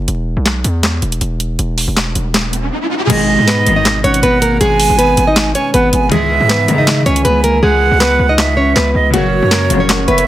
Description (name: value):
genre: hip hop, trap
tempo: 159 BPM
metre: 4/4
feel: half-time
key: G# minor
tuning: A4 = 441 Hz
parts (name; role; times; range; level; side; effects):
- distorted 808-style bass; bass; 0.0-10.3 s; E1 to C#3; -16 LUFS; equal; distortion
- trap drum kit; drums; 0.1-10.3 s; crash cymbal, handclaps, hi-hat, snare drum; -16 LUFS; equal; none
- riser; sound effects; 2.2-3.1 s; none; -21 LUFS; equal; none
- nylon-string guitar; melody; 3.1-10.3 s; F#3 to D#5; -15 LUFS; left 1 dB; tape echo
- breathy silver concert flute; second line; 3.1-10.3 s; C#5 to G#5; -16 LUFS; right 5 dB; tape echo
- glassy digital keys; accompaniment; 3.1-10.3 s; B2 to A#4; -21 LUFS; right 1 dB; chorus
- warm studio string section; stabs; 3.1-10.1 s; G#1 to D#3; -21 LUFS; left 6 dB; none
- dark analog pad; sustained chords; 9.5-10.3 s; A#4 to C#6; -22 LUFS; left 1 dB; chorus
room: light reverb, digital ambience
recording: dense, heavily limited modern master, vinyl crackle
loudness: -10 LUFS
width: side -13 dB against mid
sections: 0.0-3.1 A section; 3.1-10.3 B section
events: break 0.0-3.1; riser 2.2-3.1; hi-hats muted 7.6-9.1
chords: 0.1 E5; 3.1 G#m; 6.1 C#madd9; 9.1 F#